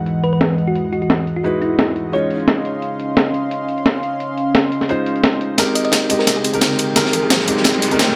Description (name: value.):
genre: liquid drum and bass.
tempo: 174 BPM.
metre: 4/4.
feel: swing 54% on 16ths.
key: Ab major.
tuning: A4 = 439 Hz.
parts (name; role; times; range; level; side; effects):
warm grand piano; accompaniment; 0.0-8.2 s; G#3 to Eb5; -23 LUFS; equal; low-pass filter, digital delay.
warm analog pad; sustained chords; 0.0-8.2 s; E3 to C6; -24 LUFS; equal; chorus.
breakbeat sampler-style drum kit; drums; 0.1-8.1 s; hi-hat, snare drum; -19 LUFS; equal; low-pass filter on hats, low-pass filter on cymbals, low-pass filter on snare.
thumb-piano-like synth pluck; melody; 0.2-2.5, 5.8-7.7 s; E4 to Eb5; -26 LUFS; equal; chorus, digital delay.
dark detuned saw bass; bass; 5.6-8.2 s; Ab1 to C2; -32 LUFS; equal; none.
crunchy breakbeat drum kit; drums; 5.6-8.1 s; ride cymbal, snare drum; -24 LUFS; equal; high-pass filter on cymbals, high-pass filter on snare, high-pass filter on room.
riser; sound effects; 6.4-8.2 s; none; -27 LUFS; equal; none.
room: light reverb, studio ambience.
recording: none.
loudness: -17 LUFS.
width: mono.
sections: 0.0-5.6 A section; 5.6-8.2 B section.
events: filter sweep on analog synth pad 0.0-5.6; build-up 5.6-8.2; drum fill 5.6-8.2; riser 6.4-8.2.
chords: 0.0 Emaj9; 2.1 Dbmaj9; 5.6 Abmaj9.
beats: | 0.07 0.41 0.75 1.10 | 1.44 1.79 2.13 2.48 | 2.82 3.17 3.51 3.86 | 4.20 4.55 4.89 5.24 | 5.58 5.93 6.27 6.62 | 6.96 7.31 7.65 8.00.